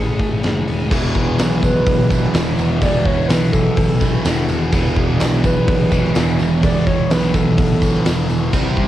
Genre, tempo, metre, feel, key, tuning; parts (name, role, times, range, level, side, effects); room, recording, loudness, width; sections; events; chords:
rock, shoegaze and dream pop; 126 BPM; 4/4; straight; E mixolydian; A4 = 440 Hz
reedy FM lead; melody; 0.0-8.3 s; G#4 to D5; -24 LUFS; equal; chorus, cassette tape, analog delay
twelve-string electric guitar; arpeggios; 0.0-0.9, 8.5-8.9 s; E3 to G#4; -30 LUFS; right 6 dB; ensemble chorus, analog delay
crunchy overdriven guitar; riff; 0.0-8.9 s; A2 to G#4; -22 LUFS; right 6 dB; reverse reverb
thick fuzz guitar; riff; 0.0-8.9 s; E2 to C4; -24 LUFS; left 6 dB; distortion, analog chorus
fuzz picked electric bass; bass; 0.0-8.9 s; E1 to C2; -21 LUFS; equal; overdrive
huge arena drum kit; drums; 0.2-8.9 s; crash cymbal, hi-hat, kick drum, snare drum; -19 LUFS; equal; cassette tape
cranked stack guitar; riff; 0.9-8.9 s; E2 to C4; -23 LUFS; equal; overdrive, phaser
tambourine; percussion; 0.9-8.6 s; -37 LUFS; right 10 dB
light reverb; home recording on cassette; -14 LUFS; side -13 dB against mid
0.9-8.9 A section
0.0 Amaj7; 0.9 E7sus4